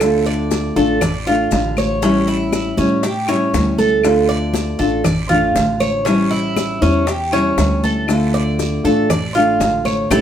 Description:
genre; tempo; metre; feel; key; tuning
latin, Cuban son and guajira; 119 BPM; 4/4; straight; D minor; A4 = 439 Hz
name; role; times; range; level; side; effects
nylon-string guitar; accompaniment; 0.0-10.2 s; D3 to F4; -18 LUFS; left 2 dB; none
Cuban tres; arpeggios; 0.0-10.2 s; C#4 to D5; -19 LUFS; right 3 dB; none
upright bass; bass; 0.0-10.2 s; A1 to A2; -23 LUFS; equal; none
bongos; percussion; 0.0-10.2 s; none; -25 LUFS; left 5 dB; none
claves; percussion; 0.0-10.2 s; none; -30 LUFS; left 6 dB; none
congas; percussion; 0.0-10.2 s; none; -23 LUFS; equal; none
guiro; percussion; 0.0-10.2 s; none; -34 LUFS; right 6 dB; none
maracas; percussion; 0.0-10.2 s; none; -34 LUFS; left 5 dB; none
room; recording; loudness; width
wet studio reverb, RT60 0.6 s; band playing live in one room; -14 LUFS; side -9 dB against mid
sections
0.0-10.2 A section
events
none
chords
0.0 Dm; 2.0 A7; 4.0 Dm; 6.1 A7; 8.1 Dm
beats
| 0.01 0.51 1.02 1.52 | 2.02 2.53 3.03 3.54 | 4.04 4.55 5.05 5.56 | 6.06 6.57 7.08 7.58 | 8.09 8.60 9.10 9.61 | 10.12

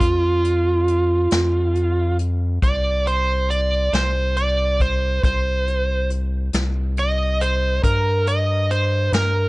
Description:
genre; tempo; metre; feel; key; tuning
slow blues; 46 BPM (dotted quarters); 12/8; straight; unclear; A4 = 440 Hz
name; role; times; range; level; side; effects
overdriven slide guitar; second line; 0.0-9.5 s; F4 to Eb5; -20 LUFS; right 2 dB; none
rubbery square bass; bass; 0.0-9.5 s; C2 to G2; -21 LUFS; left 1 dB; none
vintage brush drum kit; drums; 0.0-9.3 s; hi-hat, kick drum, snare drum; -22 LUFS; left 1 dB; none
room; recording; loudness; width
light reverb, studio ambience; nothing above 10.7 kHz; -17 LUFS; side -21 dB against mid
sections
0.0-9.5 A section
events
electric slide guitar solo 0.0-9.5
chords
0.0 F5; 5.2 C5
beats
| 0.01 1.32 2.63 3.94 | 5.24 6.54 7.85 9.15

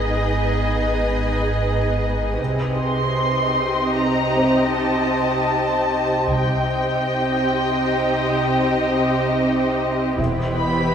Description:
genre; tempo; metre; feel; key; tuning
cinematic; 77 BPM; 5/4; straight; unclear; A4 = 439 Hz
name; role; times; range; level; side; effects
muted symphonic violin section; melody; 0.0-10.9 s; D#5 to C6; -25 LUFS; left 1 dB; none
muted symphonic violin section; second line; 0.0-10.9 s; G4 to D#5; -26 LUFS; left 3 dB; none
muted symphonic viola section; accompaniment; 0.0-10.9 s; B3 to E4; -26 LUFS; right 2 dB; none
shimmering ambient pad; sustained chords; 0.0-10.9 s; E4 to E5; -25 LUFS; equal; chorus, built-in reverb
muted symphonic cello section; bass; 0.0-10.9 s; E2 to C3; -25 LUFS; right 2 dB; none
pure sine sub bass; drone; 0.0-10.9 s; E1 to C2; -31 LUFS; equal; none
felt-muted upright piano; texture; 0.0-10.9 s; C4 to B5; -30 LUFS; left 1 dB; none
muted symphonic double bass section; bass; 2.4-10.9 s; E1 to C2; -26 LUFS; right 1 dB; none
room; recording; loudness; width
wet recital hall reverb, RT60 1.7 s; recorded in a church or concert hall; -18 LUFS; side -8 dB against mid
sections
0.0-10.9 A section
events
none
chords
0.0 G#m; 2.4 Cm; 10.2 Em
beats
0.04 0.82 1.60 | 2.39 3.17 3.96 4.74 5.52 | 6.30 7.08 7.86 8.64 9.41 | 10.19

